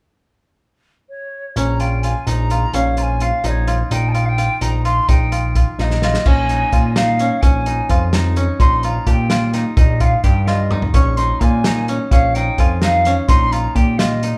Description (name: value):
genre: progressive instrumental, band music in an uneven meter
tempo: 256 BPM (eighths)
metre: 5/8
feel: straight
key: Bb dorian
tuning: A4 = 439 Hz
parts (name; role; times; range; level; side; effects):
- bright wooden flute; melody; 1.1-14.4 s; Db5 to Db6; -23 LUFS; equal; none
- koto; arpeggios; 1.6-14.4 s; Db4 to G4; -26 LUFS; equal; none
- fat analog bass; bass; 1.6-14.3 s; Bb1 to Bb2; -21 LUFS; equal; none
- warm soul drum kit; drums; 1.6-14.3 s; crash cymbal, hi-hat, kick drum, snare drum, toms; -19 LUFS; equal; none
room: moderate large studio reverb, RT60 0.8 s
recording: band playing live in one room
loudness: -16 LUFS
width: mono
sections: 0.4-1.6 A section; 1.6-6.3 B section; 6.3-14.4 C section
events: drum fill 5.8-6.3, 10.5-10.9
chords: 0.4 N.C.; 1.6 Bbm; 8.6 Ebadd9/Bb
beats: | 0.39 0.62 0.86 1.09 1.33 | 1.56 1.80 2.03 2.27 2.50 | 2.74 2.97 3.21 3.44 3.68 | 3.91 4.15 4.38 4.62 4.85 | 5.09 5.32 5.55 5.79 6.02 | 6.26 6.49 6.73 6.96 7.20 | 7.43 7.67 7.90 8.13 8.37 | 8.60 8.84 9.07 9.30 9.54 | 9.77 10.01 10.24 10.48 10.71 | 10.95 11.18 11.41 11.65 11.88 | 12.12 12.35 12.58 12.82 13.05 | 13.29 13.52 13.75 13.99 14.22